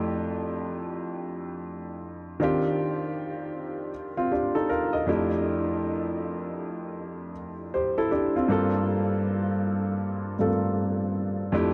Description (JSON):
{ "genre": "R&B", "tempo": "79 BPM", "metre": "4/4", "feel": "swing 62% on 16ths", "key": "F major", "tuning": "A4 = 440 Hz", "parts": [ { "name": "warm grand piano", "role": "solo", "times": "0.0-11.7 s", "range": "F2 to Eb5", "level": "-28 LUFS", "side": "equal", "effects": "analog delay" } ], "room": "wet huge ambient reverb, RT60 6.8 s", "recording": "dreamy mix soaked in reverb", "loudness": "-28 LUFS", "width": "mono", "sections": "0.0-11.7 A section", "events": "none", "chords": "0.0 Fmaj9; 2.4 Ebmaj9; 5.1 Fmaj9; 8.5 Gm9" }